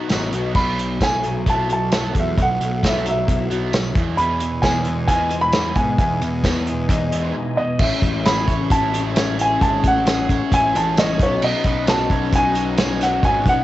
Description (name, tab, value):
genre	indie rock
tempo	133 BPM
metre	4/4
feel	straight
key	A lydian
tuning	A4 = 440 Hz
part	dark upright piano	melody	0.0-13.6 s	C#5 to B5	-21 LUFS	right 1 dB	cassette tape, analog delay
part	electric guitar through a small old amp	riff	0.0-13.6 s	A2 to E4	-25 LUFS	left 7 dB	ensemble chorus, cassette tape
part	high-gain distorted guitar	riff	0.0-13.6 s	E2 to C#5	-29 LUFS	right 6 dB	distortion, wide subtle chorus, cassette tape
part	fuzz picked electric bass	bass	0.1-13.6 s	G#1 to G#2	-24 LUFS	equal	overdrive
part	unplugged drum kit	drums	0.1-13.6 s	crash cymbal, hi-hat, kick drum, snare drum, tambourine	-21 LUFS	equal	none
part	percussive tonewheel organ	sustained chords	4.2-13.6 s	B3 to G#5	-35 LUFS	equal	none
room	light reverb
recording	home recording on cassette, nothing above 7.9 kHz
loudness	-16 LUFS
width	side -15 dB against mid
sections	0.6-7.8 A section; 7.8-13.6 B section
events	none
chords	0.0 B; 0.6 B7sus4; 4.0 Emaj7; 7.8 Amaj7; 11.2 Badd9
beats	0.10 | 0.55 1.00 1.46 1.91 | 2.37 2.82 3.27 3.73 | 4.18 4.63 5.09 5.54 | 5.99 6.45 6.90 7.35 | 7.80 8.26 8.71 9.16 | 9.61 10.06 10.52 10.97 | 11.42 11.87 12.32 12.77 | 13.22